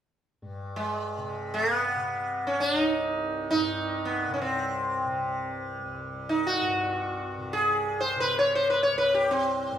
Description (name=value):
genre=indian classical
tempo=free time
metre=none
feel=none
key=C raga todi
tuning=A4 = 440 Hz
part: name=tanpura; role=drone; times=0.4-9.8 s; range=C2 to C3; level=-36 LUFS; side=left 1 dB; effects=none
part: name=sitar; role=melody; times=0.8-9.8 s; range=Ab3 to Db5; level=-25 LUFS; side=equal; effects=none
room=wet large studio reverb, RT60 1.0 s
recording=band playing live in one room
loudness=-25 LUFS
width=side -10 dB against mid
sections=0.4-9.8 A section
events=none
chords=none